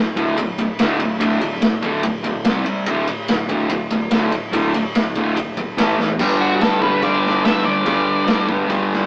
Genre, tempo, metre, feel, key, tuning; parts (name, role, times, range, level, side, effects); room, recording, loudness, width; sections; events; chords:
garage rock duo or trio; 144 BPM; 4/4; straight; A4 = 440 Hz
fuzz guitar; riff; 0.0-9.1 s; D2 to C4; -21 LUFS; equal; distortion
raw garage drum kit; drums; 0.2-9.0 s; crash cymbal, kick drum, ride cymbal, snare drum, toms; -24 LUFS; equal
octave-fuzz lead guitar; melody; 6.4-8.5 s; F#4 to E5; -22 LUFS; equal; distortion
light reverb; rough rehearsal-room recording, tube saturation, AM radio sound; -19 LUFS; mono
0.0-6.2 A section; 6.2-9.1 B section
drum fill 6.0
0.0 D5; 2.4 C5; 2.9 D5; 5.8 A5; 6.2 G5